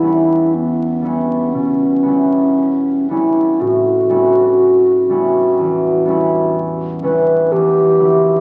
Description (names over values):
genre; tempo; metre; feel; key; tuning
classical, impressionist duo for alto flute and harp; 57-63 BPM; 4/4; rubato; E minor; A4 = 438 Hz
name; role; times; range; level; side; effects
mellow hollow alto flute; melody; 0.0-8.4 s; B3 to B4; -16 LUFS; equal; none
concert harp; accompaniment; 0.0-8.4 s; E2 to E4; -21 LUFS; equal; none
room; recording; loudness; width
wet scoring stage reverb, RT60 1.9 s; very old 78 rpm record, vinyl crackle; -15 LUFS; mono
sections
0.0-8.4 A section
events
none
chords
0.0 Em6; 3.6 A13; 7.5 Emadd9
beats
0.55 1.54 2.58 | 3.60 4.59 5.58 6.55 | 7.52